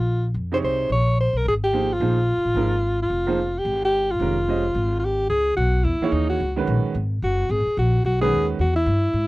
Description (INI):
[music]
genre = modal jazz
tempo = 218 BPM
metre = 4/4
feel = swing 58% on 8ths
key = C# dorian from 5.3 s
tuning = A4 = 441 Hz
[part]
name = warm alto saxophone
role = melody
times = 0.0-9.3 s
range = D#4 to Db5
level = -22 LUFS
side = equal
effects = none
[part]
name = upright bass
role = bass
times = 0.0-9.3 s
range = F1 to G#2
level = -23 LUFS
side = equal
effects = none
[part]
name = clear grand piano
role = accompaniment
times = 0.5-8.6 s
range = C3 to Eb5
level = -25 LUFS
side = right 5 dB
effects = none
[sound]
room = light reverb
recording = dry, close 1970s-style studio recording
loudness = -19 LUFS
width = side -19 dB against mid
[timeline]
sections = 0.0-5.3 A section; 5.3-9.3 B section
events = none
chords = 0.0 Bbm69; 0.9 Db (rootless); 5.3 C#m11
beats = 0.08 0.35 0.63 | 0.90 1.18 1.45 1.73 | 2.00 2.28 2.55 2.83 | 3.10 3.38 3.65 3.93 | 4.20 4.48 4.75 5.03 | 5.30 5.57 5.85 6.12 | 6.40 6.67 6.95 7.22 | 7.50 7.77 8.04 8.32 | 8.59 8.87 9.14